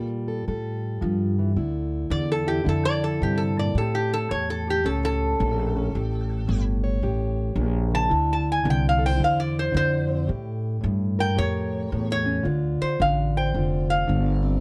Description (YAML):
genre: acoustic country blues, solo or duo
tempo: 110 BPM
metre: 4/4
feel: swing 65% on 8ths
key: D minor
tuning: A4 = 440 Hz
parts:
  - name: metal-body resonator slide guitar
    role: melody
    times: 0.0-14.6 s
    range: G4 to A5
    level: -28 LUFS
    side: equal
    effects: none
  - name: fingerpicked plugged-in steel-string acoustic guitar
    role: accompaniment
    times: 0.0-14.6 s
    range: A2 to C#5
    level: -29 LUFS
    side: equal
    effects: none
  - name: upright bass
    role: bass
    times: 0.0-14.6 s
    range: F1 to Bb2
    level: -28 LUFS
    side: equal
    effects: none
room: light reverb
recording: dark, warm production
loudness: -24 LUFS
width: mono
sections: 0.0-12.5 A section; 12.5-14.6 A section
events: resonator guitar played with a steel bar solo 0.0-12.5, 12.5-14.6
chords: 0.0 Gm9; 1.6 Dm9; 3.8 A7b9; 8.1 Dm9; 10.3 A7b9; 12.5 Dm7